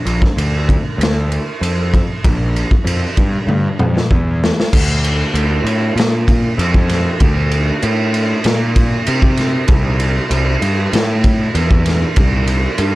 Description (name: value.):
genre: stoner and doom metal.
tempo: 97 BPM.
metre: 4/4.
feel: straight.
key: D minor.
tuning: A4 = 440 Hz.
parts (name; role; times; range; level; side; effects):
fuzz picked electric bass; bass; 0.1-13.0 s; Bb1 to C3; -16 LUFS; equal; overdrive.
raw garage drum kit; drums; 0.1-12.9 s; crash cymbal, kick drum, ride cymbal, snare drum, toms; -15 LUFS; equal; none.
room: little or no reverb.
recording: dark, warm production.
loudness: -13 LUFS.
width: side -18 dB against mid.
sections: 0.0-4.7 A section; 4.7-13.0 B section.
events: drum fill 3.5-4.7.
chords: none.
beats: 0.37 0.99 1.61 | 2.24 2.86 3.48 4.11 | 4.73 5.35 5.97 6.59 | 7.21 7.83 8.45 9.07 | 9.69 10.30 10.92 11.54 | 12.16 12.78.